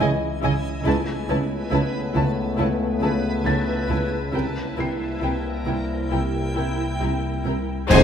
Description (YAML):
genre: cinematic, suspense film score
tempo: 68 BPM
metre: 4/4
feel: straight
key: unclear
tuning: A4 = 442 Hz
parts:
  - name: muted studio violin section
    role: melody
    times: 0.0-8.0 s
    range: G5 to A5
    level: -31 LUFS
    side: left 4 dB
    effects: none
  - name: muted studio violin section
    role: second line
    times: 0.0-8.0 s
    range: Bb4 to D#5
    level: -27 LUFS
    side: left 4 dB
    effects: none
  - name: muted symphonic viola section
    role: accompaniment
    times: 0.0-8.0 s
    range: Eb4 to E4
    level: -30 LUFS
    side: right 1 dB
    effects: none
  - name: backwards swelling texture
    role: sustained chords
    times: 0.0-8.0 s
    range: E4 to A5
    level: -32 LUFS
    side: equal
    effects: built-in reverb
  - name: mellow French horn section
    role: sustained chords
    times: 0.0-8.0 s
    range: E3 to D#5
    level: -28 LUFS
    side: left 3 dB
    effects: none
  - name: muted studio cello section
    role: riff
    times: 0.0-8.0 s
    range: F2 to C#4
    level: -33 LUFS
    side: right 2 dB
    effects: none
  - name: muted studio cello section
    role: bass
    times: 0.0-8.0 s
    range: F2 to C#3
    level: -27 LUFS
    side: right 2 dB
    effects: none
  - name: muted studio double bass section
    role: bass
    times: 0.0-8.0 s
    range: F1 to C#2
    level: -29 LUFS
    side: right 4 dB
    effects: none
  - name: analog drone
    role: drone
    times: 0.0-8.0 s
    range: C2 to F2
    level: -28 LUFS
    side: equal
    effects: chorus
  - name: felt-muted upright piano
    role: texture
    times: 0.0-7.9 s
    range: D#6 to C7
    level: -36 LUFS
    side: left 1 dB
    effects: none
  - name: clash cymbals and concert bass drum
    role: percussion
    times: 7.9-8.0 s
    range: none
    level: -19 LUFS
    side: equal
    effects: none
  - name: timpani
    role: percussion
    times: 7.9-8.0 s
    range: F2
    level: -22 LUFS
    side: left 2 dB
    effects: none
room: moderate scoring stage reverb, RT60 1.5 s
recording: minimal, uncompressed stereo recording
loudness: -21 LUFS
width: side -8 dB against mid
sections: 0.0-7.9 A section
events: none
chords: 0.0 C#madd9; 0.9 Aadd9/C#; 4.3 C7